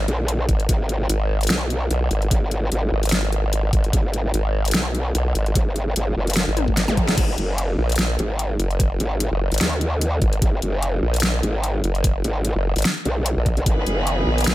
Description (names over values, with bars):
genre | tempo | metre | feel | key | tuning
heavy wobble dubstep | 148 BPM | 4/4 | swing 55% on 16ths, half-time | G# minor | A4 = 440 Hz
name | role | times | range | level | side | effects
formant-sweep wobble bass | bass | 0.0-14.5 s | F#1 to B1 | -20 LUFS | equal | chorus, overdrive
growl bass | bass | 0.1-14.3 s | F#1 to D#2 | -21 LUFS | equal | chorus, overdrive
dubstep drum kit | drums | 0.1-14.5 s | crash cymbal, hi-hat, snare drum, toms | -24 LUFS | left 1 dB | overdrive
electronic kick drum | drums | 0.5-13.8 s | none | -20 LUFS | equal | overdrive
zap | sound effects | 6.9-7.0 s | none | -30 LUFS | right 1 dB | none
warm chamber string section | sustained chords | 13.7-14.5 s | D#3 to B4 | -25 LUFS | equal | sidechain pumping
room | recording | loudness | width
little or no reverb | none | -19 LUFS | side -16 dB against mid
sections
0.0-7.2 A section; 7.2-14.5 A section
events
drop 0.0-7.2, 7.2-14.5; drum fill 6.6-7.2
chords
0.0 G#m